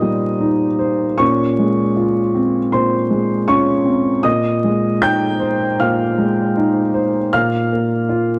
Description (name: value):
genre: neoclassical minimalist piano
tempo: 78 BPM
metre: 4/4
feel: rubato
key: unclear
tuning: A4 = 440 Hz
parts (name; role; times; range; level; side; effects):
- dark upright piano; solo; 0.0-8.4 s; Bb2 to G6; -17 LUFS; equal; none
room: light reverb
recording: dark, warm production, vinyl crackle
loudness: -17 LUFS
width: mono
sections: 0.0-8.4 A section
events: none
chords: 0.0 Cm7/Bb; 1.2 Dbmaj7/Bb; 4.2 Fm7/Bb; 7.3 Bb5